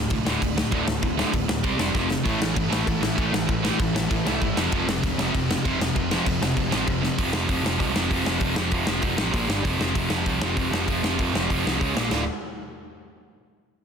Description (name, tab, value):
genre	punk rock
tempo	195 BPM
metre	4/4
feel	straight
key	unclear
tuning	A4 = 440 Hz
part	distorted electric guitar	riff	0.0-12.2 s	D2 to C#4	-28 LUFS	left 10 dB	distortion
part	sludgy distorted guitar	riff	0.0-12.2 s	D2 to F4	-26 LUFS	right 11 dB	overdrive
part	overdriven picked electric bass	bass	0.0-12.3 s	D1 to F2	-31 LUFS	equal	none
part	big rock drum kit	drums	0.1-12.2 s	crash cymbal, hi-hat, kick drum, snare drum	-26 LUFS	equal	none
part	fuzz guitar	riff	2.3-7.2 s	F2 to A3	-29 LUFS	equal	distortion
room	light reverb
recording	dense, heavily limited modern master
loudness	-21 LUFS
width	side -7 dB against mid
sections	0.0-7.2 A section; 7.2-12.1 B section; 12.1-13.3 C section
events	drum fill 1.9-2.3, 7.0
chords	0.0 D5; 1.6 C5; 1.9 F5; 2.3 A5; 4.6 F5; 9.3 Bb5; 9.5 G5; 9.6 F5; 11.8 C#5; 12.0 Bb5; 12.1 D5